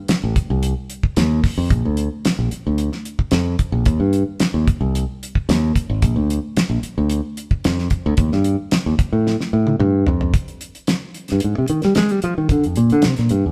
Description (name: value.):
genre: electric jazz fusion.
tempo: 111 BPM.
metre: 4/4.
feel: straight.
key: Bb major.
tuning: A4 = 440 Hz.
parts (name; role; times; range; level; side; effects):
modern bright fingered electric bass; bass; 0.1-13.5 s; Ab1 to Ab3; -20 LUFS; equal; none.
damped 70s drum kit; drums; 0.1-13.4 s; hi-hat, kick drum, snare drum, toms; -22 LUFS; equal; none.
room: moderate stone room reverb, RT60 1.3 s.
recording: band playing live in one room.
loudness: -19 LUFS.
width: mono.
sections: 0.0-10.3 A section; 10.3-13.5 B section.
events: drum fill 9.3-10.3; fingered electric bass solo 10.3-13.5.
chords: none.